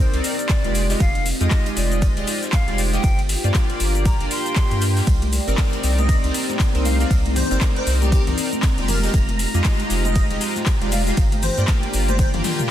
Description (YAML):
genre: deep house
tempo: 118 BPM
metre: 4/4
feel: swing 59% on 16ths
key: unclear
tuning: A4 = 439 Hz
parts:
  - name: breathy jazz flute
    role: melody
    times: 0.0-5.0 s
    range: C5 to C6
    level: -30 LUFS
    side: left 1 dB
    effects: ping-pong delay
  - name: soft string machine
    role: sustained chords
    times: 0.0-12.7 s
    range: Bb3 to D5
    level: -32 LUFS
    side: equal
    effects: ensemble chorus, sidechain pumping
  - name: chorused polysynth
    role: stabs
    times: 0.0-12.7 s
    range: Ab3 to G5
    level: -26 LUFS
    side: equal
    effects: sidechain pumping
  - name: round analog bass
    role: bass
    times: 0.0-12.4 s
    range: F1 to G2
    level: -21 LUFS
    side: equal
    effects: sidechain pumping
  - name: deep dark ambient pad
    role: texture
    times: 0.0-12.7 s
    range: C4 to G5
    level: -31 LUFS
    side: left 2 dB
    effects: chorus, built-in reverb, sidechain pumping
  - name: deep house drum kit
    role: drums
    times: 0.1-12.7 s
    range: handclaps, hi-hat, ride cymbal, shaker, toms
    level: -27 LUFS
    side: left 1 dB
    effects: overdrive
  - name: big rock drum kit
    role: drums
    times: 0.2-12.6 s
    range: hi-hat, shaker, snare drum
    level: -38 LUFS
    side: left 1 dB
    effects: none
  - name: electronic kick drum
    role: drums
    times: 0.5-12.3 s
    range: none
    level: -19 LUFS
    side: equal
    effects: overdrive
  - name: soft string machine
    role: texture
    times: 5.1-12.7 s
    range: Bb5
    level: -35 LUFS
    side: equal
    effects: phaser, ensemble chorus
  - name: congas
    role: percussion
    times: 5.2-12.7 s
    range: none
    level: -31 LUFS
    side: left 1 dB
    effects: overdrive
  - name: airy dreamy lead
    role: melody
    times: 6.0-12.3 s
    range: G4 to F5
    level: -29 LUFS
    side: equal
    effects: chorus, ping-pong delay
room: little or no reverb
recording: dense, heavily limited modern master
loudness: -17 LUFS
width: side -11 dB against mid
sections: 0.0-12.7 A section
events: drum fill 12.2-12.7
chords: 0.0 Cm9; 0.8 Fm9; 3.0 Gm7; 5.1 Fm9; 11.2 Gm7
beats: 0.50 | 1.00 1.51 2.02 2.53 | 3.04 3.55 4.05 4.56 | 5.07 5.58 6.09 6.60 | 7.11 7.61 8.12 8.63 | 9.14 9.65 10.16 10.66 | 11.17 11.68 12.19 12.70